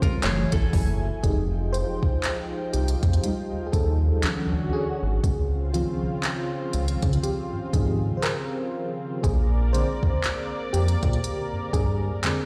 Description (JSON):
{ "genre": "contemporary R&B", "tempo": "60 BPM", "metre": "4/4", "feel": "swing 58% on 16ths", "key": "F minor", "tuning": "A4 = 440 Hz", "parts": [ { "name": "FM electric piano with tremolo", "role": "accompaniment", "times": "0.0-12.5 s", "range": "Db3 to C5", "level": "-32 LUFS", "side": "equal", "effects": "none" }, { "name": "lush unison pad", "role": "sustained chords", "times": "0.0-12.5 s", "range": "Db3 to Ab5", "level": "-35 LUFS", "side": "equal", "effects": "chorus, sidechain pumping" }, { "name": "nylon-string guitar", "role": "arpeggios", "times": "0.0-1.2 s", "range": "Fb4 to Db5", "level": "-36 LUFS", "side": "equal", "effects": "tape echo" }, { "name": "rubbery square bass", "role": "bass", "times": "0.0-12.4 s", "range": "F1 to Db3", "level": "-26 LUFS", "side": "equal", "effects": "none" }, { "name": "smooth R&B drum kit", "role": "drums", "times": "0.0-12.5 s", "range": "handclaps, hi-hat, kick drum", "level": "-28 LUFS", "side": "equal", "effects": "none" } ], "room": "light reverb, digital ambience", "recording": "played on a big sound system in a bare room, stone room reverb", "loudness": "-25 LUFS", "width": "mono", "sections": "0.0-1.2 A section; 1.2-12.5 B section", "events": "FM electric piano solo 0.0-1.2, 1.2-12.5", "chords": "0.2 Gbm9; 1.2 Fm9; 4.2 Dmaj7; 5.2 Dbmaj7; 9.2 Bb9" }